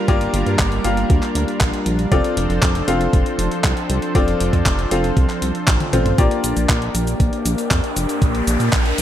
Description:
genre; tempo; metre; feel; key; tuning
italo disco; 118 BPM; 4/4; straight; unclear; A4 = 441 Hz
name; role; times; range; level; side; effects
lush unison pad; sustained chords; 0.0-9.0 s; F3 to C5; -23 LUFS; equal; chorus
clear baby grand piano; stabs; 0.0-9.0 s; Bb3 to F5; -23 LUFS; left 3 dB; low-pass filter, ping-pong delay
chorused synth bass; bass; 0.1-9.0 s; F1 to Bb2; -22 LUFS; equal; none
clean 12-bit digital drum machine; drums; 0.1-9.0 s; cabasa, handclaps, hi-hat, toms; -24 LUFS; equal; high-pass filter on hats, high-pass filter on snare, high-pass filter on toms, high-pass filter on perc, high-pass filter on room, gated reverb
electronic kick drum; drums; 0.1-8.8 s; none; -18 LUFS; equal; none
riser; sound effects; 7.2-9.0 s; none; -28 LUFS; equal; none
room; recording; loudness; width
digital ambience; none; -16 LUFS; side -11 dB against mid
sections
0.0-6.2 A section; 6.2-9.0 B section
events
drum fill 5.8-6.2; filter sweep on grand piano 6.2-9.0; riser 7.2-9.0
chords
0.0 Gm7; 2.1 Dm7/F; 6.2 Bb6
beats
| 0.08 0.59 1.10 1.61 | 2.12 2.62 3.13 3.64 | 4.15 4.66 5.17 5.67 | 6.18 6.69 7.20 7.71 | 8.22 8.73

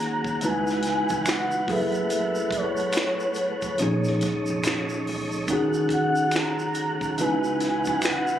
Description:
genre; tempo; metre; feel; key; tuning
R&B, neo-soul; 71 BPM; 4/4; swing 61% on 16ths; unclear; A4 = 439 Hz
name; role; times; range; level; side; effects
gliding portamento lead; melody; 0.0-8.4 s; Db5 to Bb5; -27 LUFS; equal; chorus, slapback echo
mellow tine electric piano; accompaniment; 0.0-8.4 s; Bb2 to Db5; -26 LUFS; equal; medium stereo tremolo
tonewheel organ; sustained chords; 0.0-8.4 s; A2 to Gb4; -32 LUFS; right 1 dB; slow rotary speaker, chorus vibrato
compact cocktail drum kit; drums; 0.0-8.3 s; finger snaps, hi-hat, kick drum, snare drum; -30 LUFS; equal; none
tube shaker and finger snaps; percussion; 0.3-8.4 s; none; -36 LUFS; right 2 dB; none
upright bass; bass; 0.4-8.0 s; F1 to Fb2; -33 LUFS; right 1 dB; none
room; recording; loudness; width
light reverb, small room ambience; recorded on a phone in the room, club reverb; -22 LUFS; side -10 dB against mid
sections
0.0-8.4 A section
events
none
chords
0.4 Dbm11; 1.7 Gbm11; 3.8 Bbm7; 5.5 Ebm7; 7.2 Dbm11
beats
0.41 1.26 | 2.10 2.95 3.79 4.64 | 5.49 6.33 7.17 8.02

